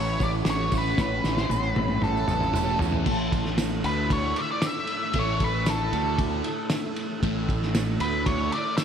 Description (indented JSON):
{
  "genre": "psychedelic rock",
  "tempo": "116 BPM",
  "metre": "4/4",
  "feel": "straight",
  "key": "A major",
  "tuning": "A4 = 441 Hz",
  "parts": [
    { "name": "octave-fuzz lead guitar", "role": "melody", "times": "0.0-8.8 s", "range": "A4 to E5", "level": "-28 LUFS", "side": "equal", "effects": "distortion, diffuse ambient delay" },
    { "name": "string machine, cellos", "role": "sustained chords", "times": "0.0-8.8 s", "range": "A3 to F#5", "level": "-34 LUFS", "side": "right 2 dB", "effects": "ensemble chorus" },
    { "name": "fuzz guitar", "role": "riff", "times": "0.0-8.5 s", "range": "A2 to E4", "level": "-30 LUFS", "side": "equal", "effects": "distortion, phaser" },
    { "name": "fuzz fingered electric bass", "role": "bass", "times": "0.0-8.5 s", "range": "E1 to E2", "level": "-29 LUFS", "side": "equal", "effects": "overdrive" },
    { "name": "cloth-damped thuddy drum kit", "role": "drums", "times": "0.2-8.8 s", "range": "crash cymbal, hi-hat, kick drum, ride cymbal, snare drum, toms", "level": "-28 LUFS", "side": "equal", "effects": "none" },
    { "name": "tambourine", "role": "percussion", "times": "0.2-8.8 s", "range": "none", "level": "-46 LUFS", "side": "right 16 dB", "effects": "none" }
  ],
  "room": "moderate plate reverb, RT60 2.8 s",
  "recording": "dreamy mix soaked in reverb",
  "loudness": "-23 LUFS",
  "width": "side -8 dB against mid",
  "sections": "0.0-3.1 A section; 3.1-8.8 B section",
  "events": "drum fill 1.0-3.1",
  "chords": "0.0 A; 3.1 A5"
}